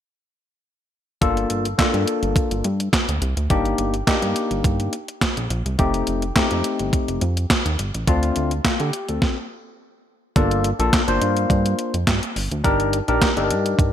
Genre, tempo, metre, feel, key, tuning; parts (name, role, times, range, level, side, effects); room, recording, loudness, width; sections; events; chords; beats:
early-eighties boogie funk; 105 BPM; 4/4; straight; G minor; A4 = 440 Hz
barky tine electric piano; accompaniment; 1.2-13.9 s; A3 to C5; -22 LUFS; left 3 dB; wide subtle chorus
chorused synth bass; bass; 1.2-13.9 s; F1 to D3; -23 LUFS; right 1 dB
clean 12-bit digital drum machine; drums; 1.2-13.9 s; handclaps, hi-hat, kick drum, snare drum; -21 LUFS; right 1 dB; overdrive, gated reverb
light reverb; bright 1980s-style digital production; -18 LUFS; side -10 dB against mid
1.2-10.4 A section; 10.4-13.9 B section
stop 9.2-10.4
1.2 Gm7; 3.5 Cm9/G (rootless); 5.8 F7; 8.1 Dm7; 10.4 Gm7; 12.6 Cm9/G (rootless)
| 1.22 1.79 2.36 2.93 | 3.50 4.07 4.64 5.22 | 5.79 6.36 6.93 7.50 | 8.07 8.64 9.22 9.79 | 10.36 10.93 11.50 12.07 | 12.64 13.22 13.79